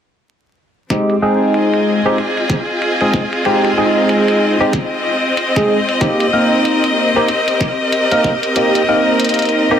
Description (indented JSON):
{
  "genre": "glitch hop",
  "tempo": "94 BPM",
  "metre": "4/4",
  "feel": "swing 60% on 16ths",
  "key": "F minor",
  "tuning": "A4 = 441 Hz",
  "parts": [
    { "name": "barky tine electric piano", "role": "stabs", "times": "0.9-9.8 s", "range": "Ab3 to Bb4", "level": "-15 LUFS", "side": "equal", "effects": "phaser, sidechain pumping, low-pass filter, dub echo" },
    { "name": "electronic hi-hat", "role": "drums", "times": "0.9-9.5 s", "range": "none", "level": "-24 LUFS", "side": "left 1 dB", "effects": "low-pass filter on hats" },
    { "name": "electronic kick drum", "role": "drums", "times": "0.9-8.4 s", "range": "none", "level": "-18 LUFS", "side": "equal", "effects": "overdrive, high-pass filter on kick, high-pass filter on room" },
    { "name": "warm chamber string section", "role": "texture", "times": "0.9-9.8 s", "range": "C4 to Eb5", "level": "-16 LUFS", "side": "left 1 dB", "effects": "sidechain pumping" }
  ],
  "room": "wet lush hall reverb, RT60 1.5 s",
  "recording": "dense, heavily limited modern master, vinyl crackle",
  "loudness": "-12 LUFS",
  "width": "side -8 dB against mid",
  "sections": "0.9-9.8 A section",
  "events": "none",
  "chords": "0.9 Fm7; 6.0 Cm7"
}